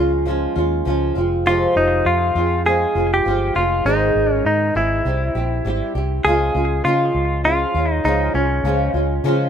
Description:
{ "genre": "acoustic pop", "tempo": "100 BPM", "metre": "4/4", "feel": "swing 60% on 16ths", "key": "unclear", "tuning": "A4 = 441 Hz", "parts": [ { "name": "direct-recorded clean electric guitar", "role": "melody", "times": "0.0-8.9 s", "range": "Db4 to Ab4", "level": "-20 LUFS", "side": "equal", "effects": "ping-pong delay" }, { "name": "flamenco guitar", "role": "accompaniment", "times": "0.0-9.5 s", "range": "F2 to Ab4", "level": "-20 LUFS", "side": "right 1 dB", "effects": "double-tracked left and right" }, { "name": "vintage muted fingered electric bass", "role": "bass", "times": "0.0-9.5 s", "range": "F1 to Db3", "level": "-22 LUFS", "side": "equal", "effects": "none" } ], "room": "studio ambience", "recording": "rough home demo mix", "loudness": "-16 LUFS", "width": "side -8 dB against mid", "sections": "0.0-6.3 A section; 6.3-9.5 B section", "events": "none", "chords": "0.0 Db; 1.2 Fm; 3.9 Ab; 5.1 C; 6.3 Db" }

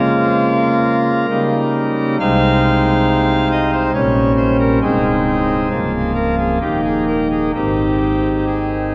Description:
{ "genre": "classical, chorale-style piece for pipe organ", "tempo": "64-69 BPM", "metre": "3/4", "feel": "rubato", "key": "Ab major", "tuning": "A4 = 437 Hz", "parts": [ { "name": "pipe organ, cornet", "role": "solo", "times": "0.0-8.9 s", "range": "C1 to F5", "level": "-16 LUFS", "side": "equal", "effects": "none" } ], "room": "wet cathedral reverb, RT60 4.8 s", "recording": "worn, warbling old tape, cassette tape, warbly pitch drift", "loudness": "-16 LUFS", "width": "mono", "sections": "0.0-8.9 A section", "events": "none", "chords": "0.0 Bbm7/Db; 1.3 Eb7/Db; 2.2 Ab/C; 4.0 Gdim/Bb; 4.8 Ab/C; 5.7 Bbm/Db; 6.6 Eb5; 7.5 Ab" }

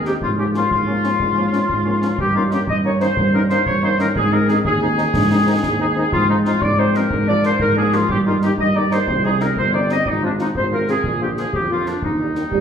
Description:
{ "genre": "military-style march for wind band", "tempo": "122 BPM (dotted quarters)", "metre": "6/8", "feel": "straight", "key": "Ab major, Eb major from 6.1 s", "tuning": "A4 = 440 Hz", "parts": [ { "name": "warm woodwind section", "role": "second line", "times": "0.0-12.6 s", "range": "D4 to Eb5", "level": "-19 LUFS", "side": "left 1 dB", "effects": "none" }, { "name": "mellow tuba", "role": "bass", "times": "0.0-12.6 s", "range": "G1 to Ab2", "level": "-20 LUFS", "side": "right 1 dB", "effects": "none" }, { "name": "mellow cornet", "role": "melody", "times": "0.1-12.4 s", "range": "Db4 to F4", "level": "-31 LUFS", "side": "right 2 dB", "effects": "none" }, { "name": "mellow French horn section", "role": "accompaniment", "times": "0.1-12.4 s", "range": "C3 to Db4", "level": "-26 LUFS", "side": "left 3 dB", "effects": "none" }, { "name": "concert snare drum and concert bass drum", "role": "drums", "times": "0.1-12.6 s", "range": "none", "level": "-27 LUFS", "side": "equal", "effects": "none" }, { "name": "warm euphonium", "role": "second line", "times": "12.5-12.6 s", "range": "G3", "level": "-16 LUFS", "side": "right 9 dB", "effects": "none" } ], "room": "wet recital hall reverb, RT60 1.3 s", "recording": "minimal, uncompressed stereo recording", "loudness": "-15 LUFS", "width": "side -7 dB against mid", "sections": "0.0-12.6 A section", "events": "none", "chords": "0.2 Bbm7/Ab; 2.2 Eb7/G; 4.2 Ab; 6.1 Fm7/Ab; 7.1 Bb7/Ab; 8.1 Eb/G; 9.1 Cm; 10.1 Fm/Ab; 11.0 Bb; 12.0 Eb" }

